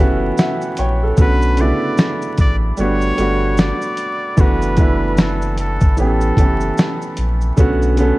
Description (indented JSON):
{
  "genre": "lo-fi hip hop",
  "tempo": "75 BPM",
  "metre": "4/4",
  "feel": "swing 60% on 16ths",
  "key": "unclear",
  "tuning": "A4 = 439 Hz",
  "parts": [
    { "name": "clear upright piano", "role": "accompaniment", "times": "0.0-8.2 s", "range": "C#3 to G5", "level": "-19 LUFS", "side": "right 1 dB", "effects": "cassette tape" },
    { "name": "warm sub bass", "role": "bass", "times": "0.0-8.1 s", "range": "F#1 to B1", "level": "-19 LUFS", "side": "equal", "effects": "none" },
    { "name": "dusty soul sampler-style drum kit", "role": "drums", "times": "0.4-8.2 s", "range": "hi-hat, kick drum, shaker, snare drum", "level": "-15 LUFS", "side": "equal", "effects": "none" },
    { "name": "trumpet with straight mute", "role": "melody", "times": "1.2-7.2 s", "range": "A4 to D5", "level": "-24 LUFS", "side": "left 1 dB", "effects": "tape echo" }
  ],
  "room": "little or no reverb",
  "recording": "dark, warm production, vinyl crackle",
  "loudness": "-14 LUFS",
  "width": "side -19 dB against mid",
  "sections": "0.0-8.2 A section",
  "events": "upright piano fill 0.0-1.2",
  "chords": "0.0 A7; 1.2 Bm7; 2.8 Gmaj7; 4.4 D6/F#; 6.0 A7; 7.6 Bm7"
}